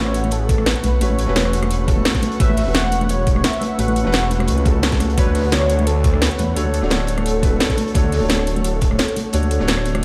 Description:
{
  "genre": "liquid drum and bass",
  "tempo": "173 BPM",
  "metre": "4/4",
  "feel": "straight",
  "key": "A major",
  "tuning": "A4 = 439 Hz",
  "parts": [
    { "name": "warm velvety synth lead", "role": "melody", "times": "0.0-10.0 s", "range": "G#4 to F#5", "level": "-28 LUFS", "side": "equal", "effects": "chorus, tape echo" },
    { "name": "felt-muted upright piano", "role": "accompaniment", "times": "0.0-10.0 s", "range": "A3 to C#5", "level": "-27 LUFS", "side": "equal", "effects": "digital delay" },
    { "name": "glassy FM pad", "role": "sustained chords", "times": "0.0-10.0 s", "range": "B4 to C#6", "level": "-32 LUFS", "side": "equal", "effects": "ensemble chorus, built-in reverb, sidechain pumping" },
    { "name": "swelling detuned saw bass", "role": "bass", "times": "0.0-10.0 s", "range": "D1 to E2", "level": "-22 LUFS", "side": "equal", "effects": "none" },
    { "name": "crunchy breakbeat drum kit", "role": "drums", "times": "0.1-9.9 s", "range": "hi-hat, snare drum", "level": "-34 LUFS", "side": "equal", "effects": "high-pass filter on hats, high-pass filter on snare, high-pass filter on room" },
    { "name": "drum and bass drum kit", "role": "drums", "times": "0.1-10.0 s", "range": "hi-hat, rim click, snare drum", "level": "-24 LUFS", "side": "equal", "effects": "none" },
    { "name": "congas", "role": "percussion", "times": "0.2-10.0 s", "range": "none", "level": "-28 LUFS", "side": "equal", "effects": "none" },
    { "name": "electronic kick drum", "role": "drums", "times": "0.5-8.9 s", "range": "none", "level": "-21 LUFS", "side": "equal", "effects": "overdrive" }
  ],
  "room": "light reverb, small room ambience",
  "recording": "played on a big sound system in a bare room, large studio reverb",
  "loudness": "-18 LUFS",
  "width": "mono",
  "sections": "0.0-10.0 A section",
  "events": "none",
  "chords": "0.0 A69; 5.2 Dmaj7"
}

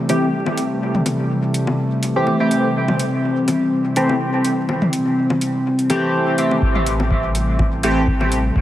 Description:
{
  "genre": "dub techno",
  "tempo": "124 BPM",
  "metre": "4/4",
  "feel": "swing 54% on 16ths",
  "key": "A minor",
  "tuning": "A4 = 440 Hz",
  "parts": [
    { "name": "warbly tape-like pad", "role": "sustained chords", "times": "0.0-8.6 s", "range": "C3 to C4", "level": "-21 LUFS", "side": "equal", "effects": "chorus, built-in reverb, vintage 12-bit sampler grit, sidechain pumping" },
    { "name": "resonant sweep polysynth", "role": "stabs", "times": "0.1-8.0 s", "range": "E3 to G4", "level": "-20 LUFS", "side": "equal", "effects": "chorus, phaser, cassette tape, sidechain pumping, dub echo" },
    { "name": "electronic hi-hat", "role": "drums", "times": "0.1-8.4 s", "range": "none", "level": "-28 LUFS", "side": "right 1 dB", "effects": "none" },
    { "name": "electronic bongos and toms", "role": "percussion", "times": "0.5-8.3 s", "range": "none", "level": "-25 LUFS", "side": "left 2 dB", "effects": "overdrive, sidechain pumping on toms, sidechain pumping on perc, dub echo" },
    { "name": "soft dub sub bass", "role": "bass", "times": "6.6-8.6 s", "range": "A1", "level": "-21 LUFS", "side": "equal", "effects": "sidechain pumping" },
    { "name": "electronic kick drum", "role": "drums", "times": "6.6-8.6 s", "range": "none", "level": "-20 LUFS", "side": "equal", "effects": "none" }
  ],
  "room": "wet lush hall reverb, RT60 2.1 s",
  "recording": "heavily compressed radio sound, vinyl crackle",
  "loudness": "-16 LUFS",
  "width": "side -13 dB against mid",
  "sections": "0.0-6.6 A section; 6.6-8.6 B section",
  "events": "none",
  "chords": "0.0 Am7"
}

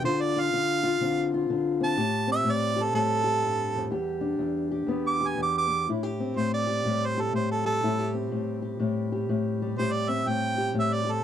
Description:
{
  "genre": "acoustic country blues, solo or duo",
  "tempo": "123 BPM",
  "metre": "4/4",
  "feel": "swing 63% on 8ths",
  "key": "A minor",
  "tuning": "A4 = 440 Hz",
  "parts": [
    { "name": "clear harmonica", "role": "melody", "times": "0.0-11.2 s", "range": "A4 to D6", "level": "-27 LUFS", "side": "right 4 dB", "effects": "none" },
    { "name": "fingerpicked steel-string acoustic guitar", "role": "accompaniment", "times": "0.0-11.2 s", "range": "E2 to G4", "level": "-27 LUFS", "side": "left 3 dB", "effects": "none" }
  ],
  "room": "small room ambience",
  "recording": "dry, close 1970s-style studio recording",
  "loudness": "-24 LUFS",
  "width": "side -10 dB against mid",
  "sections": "0.0-5.9 A section; 5.9-11.2 A section",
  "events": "harmonica solo 0.0-5.9, 5.9-11.2",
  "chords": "0.0 Dm7; 2.0 Am7; 3.9 Em7; 5.9 Am7"
}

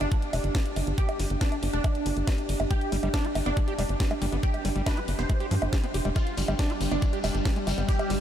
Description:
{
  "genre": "psychedelic trance",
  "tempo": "139 BPM",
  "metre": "4/4",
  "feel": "straight",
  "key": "unclear",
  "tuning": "A4 = 440 Hz",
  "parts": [
    { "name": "supersaw stab", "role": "melody", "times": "0.0-8.1 s", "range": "D4 to C5", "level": "-34 LUFS", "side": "right 1 dB", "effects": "phaser, sidechain pumping, analog delay" },
    { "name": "tight sequencer bass", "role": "bass", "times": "0.0-8.2 s", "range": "F1 to G2", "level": "-28 LUFS", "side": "equal", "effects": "none" },
    { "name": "drum and bass drum kit", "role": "drums", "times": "0.0-8.2 s", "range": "bongos, hi-hat, snare drum", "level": "-34 LUFS", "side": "right 1 dB", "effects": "none" },
    { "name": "deep dark ambient pad", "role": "texture", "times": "0.0-8.2 s", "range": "D4 to G5", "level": "-35 LUFS", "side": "right 3 dB", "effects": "chorus, built-in reverb, sidechain pumping" },
    { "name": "electronic kick drum", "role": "drums", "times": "0.1-8.0 s", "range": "none", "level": "-26 LUFS", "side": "equal", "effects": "none" },
    { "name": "screaming distorted acid line", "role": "riff", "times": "2.7-8.1 s", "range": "F3 to G4", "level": "-36 LUFS", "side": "moving between left 4 dB and right 4 dB", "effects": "distortion, chorus, auto-pan, sidechain pumping, analog delay" },
    { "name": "evolving wavetable pad", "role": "sustained chords", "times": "6.7-8.2 s", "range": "G3", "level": "-33 LUFS", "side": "left 2 dB", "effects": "chorus, built-in reverb, sidechain pumping" },
    { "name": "shekere", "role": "percussion", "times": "6.2-8.2 s", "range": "none", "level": "-40 LUFS", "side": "left 5 dB", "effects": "none" }
  ],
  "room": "light reverb",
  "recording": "none",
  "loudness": "-24 LUFS",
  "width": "side -10 dB against mid",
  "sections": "0.0-8.2 A section",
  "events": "none",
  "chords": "0.0 G5"
}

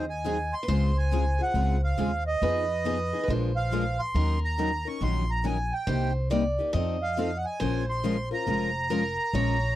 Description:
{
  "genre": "acoustic string swing (jazz manouche)",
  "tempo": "139 BPM",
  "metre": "4/4",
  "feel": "swing 64% on 8ths",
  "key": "Bb minor",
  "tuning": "A4 = 440 Hz",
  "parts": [
    { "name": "accordion", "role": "melody", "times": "0.0-9.8 s", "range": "Eb5 to Db6", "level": "-30 LUFS", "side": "right 2 dB", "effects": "none" },
    { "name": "picked steel-string acoustic guitar", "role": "second line", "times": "0.0-9.8 s", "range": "Bb4 to Eb5", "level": "-34 LUFS", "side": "right 1 dB", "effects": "none" },
    { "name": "picked steel-string acoustic guitar", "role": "accompaniment", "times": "0.0-9.6 s", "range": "C3 to Bb4", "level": "-31 LUFS", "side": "left 8 dB", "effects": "none" },
    { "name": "picked steel-string acoustic guitar", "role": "accompaniment", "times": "0.0-9.6 s", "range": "C3 to Bb4", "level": "-34 LUFS", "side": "right 5 dB", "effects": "none" },
    { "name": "upright bass", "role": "bass", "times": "0.0-9.8 s", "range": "F1 to F2", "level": "-28 LUFS", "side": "equal", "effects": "none" }
  ],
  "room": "little or no reverb",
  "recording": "dry, close 1970s-style studio recording",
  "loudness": "-24 LUFS",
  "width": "side -14 dB against mid",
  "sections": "0.0-9.8 A section",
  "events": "none",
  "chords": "0.0 Ab7; 0.7 Dbmaj7; 2.4 Fm7b5; 3.3 Bb7; 4.1 Ebm7; 5.9 Cm7; 6.7 F7; 7.6 Bbm7"
}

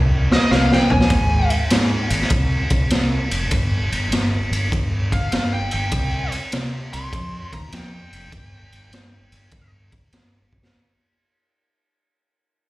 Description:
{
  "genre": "blues rock power trio and southern rock",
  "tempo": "100 BPM",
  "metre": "4/4",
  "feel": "swing 67% on 8ths",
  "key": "C minor",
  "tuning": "A4 = 443 Hz",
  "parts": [
    { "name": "fuzz fingered electric bass", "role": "bass", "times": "0.0-10.6 s", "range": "F1 to C3", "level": "-22 LUFS", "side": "equal", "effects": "overdrive" },
    { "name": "nasal lead guitar with a parked wah", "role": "melody", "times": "0.3-1.5, 5.1-9.7 s", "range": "Eb5 to C6", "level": "-27 LUFS", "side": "equal", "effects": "overdrive, slapback echo, digital delay" },
    { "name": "raw garage drum kit", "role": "drums", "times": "0.3-10.7 s", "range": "kick drum, ride cymbal, snare drum, toms", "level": "-20 LUFS", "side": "equal", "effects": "none" }
  ],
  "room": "light reverb",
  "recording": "live gig heard through the venue's PA, club reverb",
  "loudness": "-17 LUFS",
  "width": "side -18 dB against mid",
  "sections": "0.0-10.7 A section",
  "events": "fade-out 0.0-10.7; drum fill 0.0-1.1, 10.4; lead electric guitar solo 0.0-10.7",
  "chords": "0.0 N.C.; 1.1 Ab; 3.5 N.C.; 5.9 C5; 8.3 N.C."
}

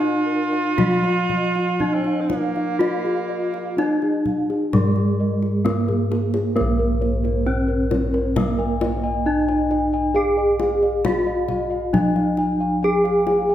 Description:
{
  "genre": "Javanese gamelan",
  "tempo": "57-67 BPM",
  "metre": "4/4",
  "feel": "straight",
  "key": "Bb slendro",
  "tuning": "A4 = 442 Hz",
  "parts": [
    { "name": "gamelan-type bronze metallophone", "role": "melody", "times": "0.0-13.5 s", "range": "Ab3-45c to Ab4-45c", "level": "-21 LUFS", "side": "equal", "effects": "none" },
    { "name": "breathy tenor saxophone", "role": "second line", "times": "0.0-4.4 s", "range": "Bb3 to F4+27c", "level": "-25 LUFS", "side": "right 4 dB", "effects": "none" },
    { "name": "gamelan-type bossed gongs", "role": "arpeggios", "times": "0.0-13.5 s", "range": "Ab4-45c to Ab5-45c", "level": "-28 LUFS", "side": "left 4 dB", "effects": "none" },
    { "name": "gamelan-type bronze metallophone", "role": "arpeggios", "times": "0.0-13.5 s", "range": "Ab4-45c to Ab5-45c", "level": "-31 LUFS", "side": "right 5 dB", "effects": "none" },
    { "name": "gamelan-type bossed gongs", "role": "bass", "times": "0.0-13.5 s", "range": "Bb1 to Bb4", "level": "-24 LUFS", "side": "equal", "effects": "none" },
    { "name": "kendang", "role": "percussion", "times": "0.0-13.5 s", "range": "none", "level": "-27 LUFS", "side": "left 3 dB", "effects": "none" }
  ],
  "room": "moderate recital hall reverb, RT60 1.4 s",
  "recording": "none",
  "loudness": "-18 LUFS",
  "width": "side -11 dB against mid",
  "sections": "0.0-6.6 A section; 6.6-13.5 B section",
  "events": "drum fill 5.9-6.6",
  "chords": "none"
}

